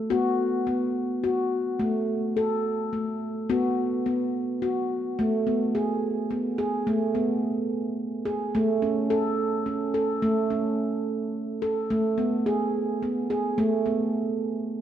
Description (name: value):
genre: world meditative, meditative tuned percussion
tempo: 107 BPM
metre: 3/4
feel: straight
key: A major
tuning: A4 = 440 Hz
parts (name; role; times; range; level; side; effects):
- handpan; solo; 0.0-14.5 s; A3 to A4; -24 LUFS; equal; none
room: wet echo chamber reverb, RT60 2.1 s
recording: none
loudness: -24 LUFS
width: side -10 dB against mid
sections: 0.0-5.2 A section; 5.2-14.8 B section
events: none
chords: 0.1 B5; 1.8 N.C.; 3.5 B5; 5.2 Asus2; 8.5 A; 11.9 Asus2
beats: | 0.10 0.67 1.24 | 1.80 2.37 2.93 | 3.50 4.06 4.62 | 5.18 5.75 6.31 | 6.87 7.43 7.99 | 8.55 9.11 9.67 | 10.23 10.79 11.35 | 11.90 12.46 13.02 | 13.58 14.14